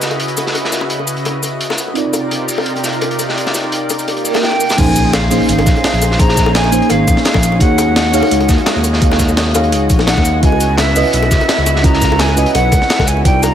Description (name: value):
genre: liquid drum and bass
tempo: 170 BPM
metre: 4/4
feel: straight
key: unclear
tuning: A4 = 438 Hz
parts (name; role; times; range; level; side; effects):
- mellow FM electric piano; accompaniment; 0.0-13.5 s; Bb3 to Gb5; -18 LUFS; right 1 dB; chorus, phaser, tape echo
- lush unison pad; sustained chords; 0.0-13.5 s; C3 to D6; -21 LUFS; equal; chorus
- breakbeat sampler-style drum kit; drums; 0.0-13.5 s; crash cymbal, hi-hat, shaker, snare drum; -20 LUFS; equal; none
- crunchy breakbeat drum kit; drums; 0.0-13.5 s; hi-hat, snare drum; -21 LUFS; equal; high-pass filter on hats, high-pass filter on snare, high-pass filter on room
- bongos; percussion; 0.1-13.5 s; none; -24 LUFS; left 5 dB; none
- swell and impact; sound effects; 4.2-6.2 s; none; -21 LUFS; right 2 dB; none
- breathy bright jazz flute; melody; 4.4-13.5 s; Fb5 to Bb5; -18 LUFS; equal; dub echo
- smooth gliding synth bass; bass; 4.8-13.5 s; Ab1 to Eb2; -16 LUFS; equal; none
- electronic kick drum; drums; 4.8-13.3 s; none; -14 LUFS; equal; overdrive
room: light reverb, small room reverb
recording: none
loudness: -11 LUFS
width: side -10 dB against mid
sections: 0.0-4.8 A section; 4.8-13.5 B section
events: swell 4.2-4.8; drop 4.8-13.5; impact 4.8-6.2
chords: 0.0 Dbm11; 2.0 Cm11; 4.8 Bbm11; 7.6 Ebm11; 10.4 Dbm11